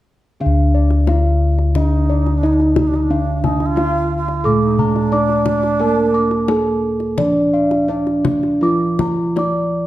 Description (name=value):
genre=Javanese gamelan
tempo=88 BPM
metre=4/4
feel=uneven beats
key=D pelog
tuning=A4 = 437 Hz
part: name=gamelan-type bronze metallophone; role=melody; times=0.4-9.9 s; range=D4 to D5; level=-20 LUFS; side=equal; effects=none
part: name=gamelan-type bronze metallophone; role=accompaniment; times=0.4-9.9 s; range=D3 to D4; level=-20 LUFS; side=right 2 dB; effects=none
part: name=gamelan-type bossed gongs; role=arpeggios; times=0.4-9.8 s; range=D5 to D6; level=-25 LUFS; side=left 1 dB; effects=none
part: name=gamelan-type bossed gongs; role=bass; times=0.4-9.9 s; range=D2 to Bb4-20c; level=-19 LUFS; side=left 1 dB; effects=none
part: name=kendang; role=percussion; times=0.9-9.5 s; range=none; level=-24 LUFS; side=left 4 dB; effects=none
part: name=bright wooden-headed alto flute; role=second line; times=1.7-6.9 s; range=D4 to F4-21c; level=-24 LUFS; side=right 4 dB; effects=none
room=moderate recital hall reverb, RT60 1.4 s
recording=dark, warm production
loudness=-14 LUFS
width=side -14 dB against mid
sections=0.4-9.9 A section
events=none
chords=none